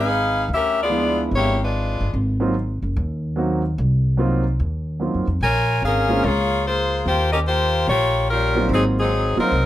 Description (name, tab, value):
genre	jazz, big band swing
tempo	146 BPM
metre	4/4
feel	swing 66% on 8ths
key	Ab mixolydian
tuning	A4 = 439 Hz
part	edgy saxophone section	melody	0.0-2.2, 5.4-9.7 s	Gb3 to Ab5	-19 LUFS	left 2 dB	plate reverb
part	upright bass	bass	0.0-9.7 s	Gb1 to Gb2	-22 LUFS	equal	none
part	warm concert grand piano	accompaniment	0.9-9.5 s	F3 to Gb4	-23 LUFS	right 2 dB	none
room	moderate club reverb, RT60 0.6 s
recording	none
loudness	-18 LUFS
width	side -13 dB against mid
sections	0.0-9.7 A section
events	none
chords	0.5 Ddim7; 2.1 Ab13; 5.4 Bbm7; 7.1 Eb13; 8.7 Ab13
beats	0.09 | 0.50 0.91 1.32 1.73 | 2.13 2.54 2.95 3.36 | 3.77 4.18 4.59 5.00 | 5.41 5.82 6.23 6.64 | 7.05 7.46 7.87 8.28 | 8.69 9.10 9.51